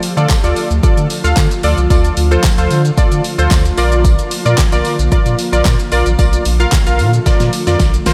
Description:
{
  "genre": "dance-pop",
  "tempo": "112 BPM",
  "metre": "4/4",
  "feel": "straight",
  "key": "unclear",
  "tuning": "A4 = 445 Hz",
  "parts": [
    { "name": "ethereal airy pad", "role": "sustained chords", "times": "0.0-8.1 s", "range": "D3 to F4", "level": "-24 LUFS", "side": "equal", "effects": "ensemble chorus, built-in reverb, sidechain pumping" },
    { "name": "deep house drum kit", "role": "drums", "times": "0.0-8.1 s", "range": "handclaps, hi-hat, kick drum, shaker, snare drum", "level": "-17 LUFS", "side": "equal", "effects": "none" },
    { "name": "tambourine", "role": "percussion", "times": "0.0-8.1 s", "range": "none", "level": "-35 LUFS", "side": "equal", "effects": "none" },
    { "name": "warm analog keys", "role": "accompaniment", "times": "0.2-8.1 s", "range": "F4 to F5", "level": "-20 LUFS", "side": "equal", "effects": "chorus, sidechain pumping" },
    { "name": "saturated sub bass", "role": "bass", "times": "0.2-8.1 s", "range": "A1 to D3", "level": "-17 LUFS", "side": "equal", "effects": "sidechain pumping" }
  ],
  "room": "light reverb",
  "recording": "none",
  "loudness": "-13 LUFS",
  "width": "mono",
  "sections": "0.0-8.1 A section",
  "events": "drum fill 7.3-8.1",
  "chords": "0.0 Dm; 3.8 Bb"
}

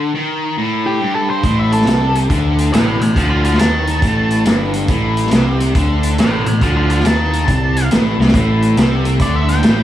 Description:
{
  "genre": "blues rock power trio and southern rock",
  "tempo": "139 BPM",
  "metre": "4/4",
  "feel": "swing 65% on 8ths",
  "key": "A minor",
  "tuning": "A4 = 440 Hz",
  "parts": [
    { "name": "distorted electric guitar", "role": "riff", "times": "0.0-9.8 s", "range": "G2 to D#3", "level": "-18 LUFS", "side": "left 1 dB", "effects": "distortion" },
    { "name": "octave-fuzz lead guitar", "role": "melody", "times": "0.9-9.8 s", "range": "G4 to A5", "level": "-20 LUFS", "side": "equal", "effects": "distortion, slapback echo" },
    { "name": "fuzz picked electric bass", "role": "bass", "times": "1.4-9.8 s", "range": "G1 to D#2", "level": "-17 LUFS", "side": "equal", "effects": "overdrive" },
    { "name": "vintage drum kit", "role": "drums", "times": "1.4-9.8 s", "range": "hi-hat, kick drum, snare drum", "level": "-17 LUFS", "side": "equal", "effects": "none" },
    { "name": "overdriven tonewheel organ", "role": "sustained chords", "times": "8.3-9.8 s", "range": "A4 to E5", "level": "-29 LUFS", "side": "right 1 dB", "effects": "slow rotary speaker" }
  ],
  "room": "light reverb, small room ambience",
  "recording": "none",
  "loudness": "-12 LUFS",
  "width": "side -12 dB against mid",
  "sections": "0.0-9.8 A section",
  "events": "drum fill 8.1",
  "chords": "0.0 Am"
}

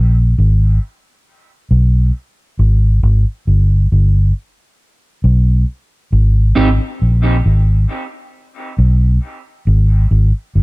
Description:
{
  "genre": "dub reggae",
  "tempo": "68 BPM",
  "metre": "4/4",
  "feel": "straight",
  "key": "unclear",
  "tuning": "A4 = 440 Hz",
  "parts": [
    { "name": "vintage muted fingered electric bass", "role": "bass", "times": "0.0-10.6 s", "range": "G1 to Cb2", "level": "-10 LUFS", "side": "equal", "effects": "none" },
    { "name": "semi-hollow electric guitar", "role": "accompaniment", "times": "6.6-6.7 s", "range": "C4 to G4", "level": "-20 LUFS", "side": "right 4 dB", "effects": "dub echo" }
  ],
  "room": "digital ambience",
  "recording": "none",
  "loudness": "-11 LUFS",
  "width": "side -23 dB against mid",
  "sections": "0.0-10.6 A section",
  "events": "break 0.0-6.1",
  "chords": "0.0 Absus2; 0.8 N.C."
}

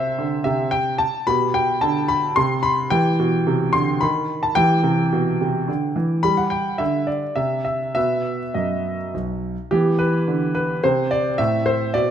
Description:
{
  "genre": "classical-period piano sonatina",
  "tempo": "108 BPM",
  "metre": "3/4",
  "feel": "straight",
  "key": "E minor",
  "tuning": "A4 = 441 Hz",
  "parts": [
    { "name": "warm concert grand piano", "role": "solo", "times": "0.0-12.1 s", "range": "B1 to C6", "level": "-18 LUFS", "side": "equal", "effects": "none" }
  ],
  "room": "wet recital hall reverb, RT60 1.6 s",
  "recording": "none",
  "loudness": "-18 LUFS",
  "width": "side -9 dB against mid",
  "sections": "0.0-9.7 A section; 9.7-12.1 B section",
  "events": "none",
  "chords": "0.0 C; 1.3 G/B; 2.4 N.C.; 2.9 Em; 4.0 N.C.; 4.6 Em; 6.2 G5; 7.4 N.C.; 8.0 B; 9.7 E5; 10.8 N.C.; 11.4 Am"
}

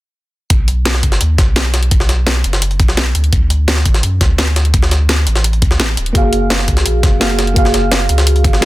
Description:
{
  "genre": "liquid drum and bass",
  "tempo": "170 BPM",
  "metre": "4/4",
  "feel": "straight",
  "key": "unclear",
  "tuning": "A4 = 439 Hz",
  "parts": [
    { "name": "warm sub bass", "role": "bass", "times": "0.5-8.7 s", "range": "D1 to F#2", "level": "-14 LUFS", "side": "equal", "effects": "none" },
    { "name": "drum and bass drum kit", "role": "drums", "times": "0.5-8.7 s", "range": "hi-hat, snare drum", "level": "-18 LUFS", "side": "equal", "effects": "none" },
    { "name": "electronic kick drum", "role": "drums", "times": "0.5-8.5 s", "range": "none", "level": "-13 LUFS", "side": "equal", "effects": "none" },
    { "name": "jungle sampler-style drum kit", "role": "drums", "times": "0.5-8.7 s", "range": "hi-hat, snare drum", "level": "-20 LUFS", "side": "equal", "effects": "high-pass filter on hats, high-pass filter on snare" },
    { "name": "mellow FM electric piano", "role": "accompaniment", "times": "6.1-8.7 s", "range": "A#3 to E#5", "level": "-16 LUFS", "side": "right 1 dB", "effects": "chorus, tape echo" }
  ],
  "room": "little or no reverb",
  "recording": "dense, heavily limited modern master",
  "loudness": "-11 LUFS",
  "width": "side -17 dB against mid",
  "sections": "0.5-8.7 A section",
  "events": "none",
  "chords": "0.5 B5; 3.1 D5; 6.2 F#maj9"
}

